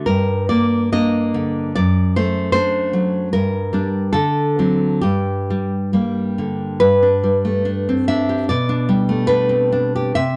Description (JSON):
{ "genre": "romantic piece for solo classical guitar", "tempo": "64-78 BPM", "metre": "2/4", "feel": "rubato", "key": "G minor, G major from 6.8 s", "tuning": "A4 = 439 Hz", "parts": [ { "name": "nylon-string guitar", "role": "solo", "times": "0.0-10.4 s", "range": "F#2 to E5", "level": "-18 LUFS", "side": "equal", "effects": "none" } ], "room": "moderate studio reverb, RT60 0.6 s", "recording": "dark, warm production, nothing above 11.0 kHz", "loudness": "-18 LUFS", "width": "mono", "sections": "0.0-6.8 A section; 6.8-10.4 B section", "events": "none", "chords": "0.1 Gm; 1.8 D/F#; 3.3 Gm; 4.2 D7; 5.0 Gm; 6.8 G; 8.5 G/B", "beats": "| 0.09 0.93 | 1.75 2.54 | 3.32 4.15 | 5.05 5.95 | 6.83 7.67 | 8.48 9.27 | 10.14" }